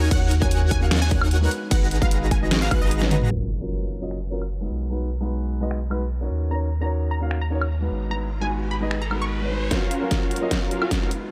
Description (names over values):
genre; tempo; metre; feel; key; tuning
future bass; 150 BPM; 4/4; half-time; F# major; A4 = 440 Hz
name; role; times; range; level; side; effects
dark baby grand piano; accompaniment; 0.0-11.3 s; F#3 to E#5; -32 LUFS; equal; sidechain pumping, dub echo
airy dreamy lead; arpeggios; 0.0-3.3 s; F#6 to A#6; -38 LUFS; equal; chorus, sidechain pumping, dub echo
supersaw chords; riff; 0.0-3.3, 9.7-11.1 s; C#4 to A#5; -31 LUFS; equal; phaser, sidechain pumping, low-pass filter
saturated sub bass; bass; 0.0-9.7 s; F#1 to D#2; -26 LUFS; equal; sidechain pumping
unison pluck; melody; 0.1-3.0, 6.5-9.4 s; D#5 to C#6; -35 LUFS; equal; phaser, sidechain pumping, delay
dubstep drum kit; drums; 0.1-11.2 s; crash cymbal, finger snaps, hi-hat, snare drum, toms, woodblock; -29 LUFS; equal; overdrive
electronic kick drum; drums; 0.1-2.8, 9.7-11.0 s; none; -25 LUFS; equal; overdrive
impact and riser; sound effects; 3.3-11.3 s; none; -37 LUFS; equal; none
room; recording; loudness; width
digital ambience; low-pass filter; -23 LUFS; mono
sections
0.0-3.3 A section; 3.3-9.7 B section; 9.7-11.3 C section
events
drop 0.0-3.3; kick drops out 2.9-3.3; drum fill 3.0, 9.7-11.3; impact 3.3-4.9; filter sweep 3.3-9.7; riser 7.7-9.7; build-up 9.7-11.3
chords
0.0 D#m7; 1.5 G#m7; 3.3 F#maj7; 4.7 B6; 6.3 D#m7; 7.9 G#m7; 9.7 F#maj7